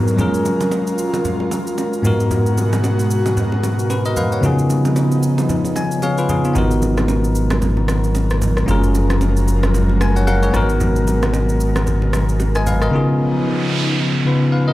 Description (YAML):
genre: amapiano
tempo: 113 BPM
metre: 4/4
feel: swing 58% on 16ths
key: G# dorian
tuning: A4 = 444 Hz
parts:
  - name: bell-like tine electric piano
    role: accompaniment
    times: 0.0-14.7 s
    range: G#2 to G#5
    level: -18 LUFS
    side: left 1 dB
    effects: none
  - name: airy breathy pad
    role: sustained chords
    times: 0.0-14.7 s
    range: B2 to A#4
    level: -22 LUFS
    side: equal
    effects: chorus
  - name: downlifter and noise sweep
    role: sound effects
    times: 0.0-2.3, 13.3-14.7 s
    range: none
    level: -28 LUFS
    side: right 4 dB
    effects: none
  - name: electronic shaker and rim click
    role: drums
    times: 0.1-12.9 s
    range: none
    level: -29 LUFS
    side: equal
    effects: none
  - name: congas and bongos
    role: percussion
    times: 0.2-12.8 s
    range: none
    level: -25 LUFS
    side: right 2 dB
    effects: none
  - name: sub bass with octave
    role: bass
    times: 6.6-12.9 s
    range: F#1 to G#1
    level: -17 LUFS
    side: equal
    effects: none
room: light reverb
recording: played on a big sound system in a bare room, large studio reverb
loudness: -15 LUFS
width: side -16 dB against mid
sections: 0.0-14.7 A section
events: tine electric piano fill 5.5-6.6, 9.7-10.8; noise sweep 13.3-14.7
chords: 0.2 F#maj9; 2.0 G#m9; 4.4 C#9; 6.6 G#m9; 8.7 F#maj9; 10.5 G#m9; 12.9 C#9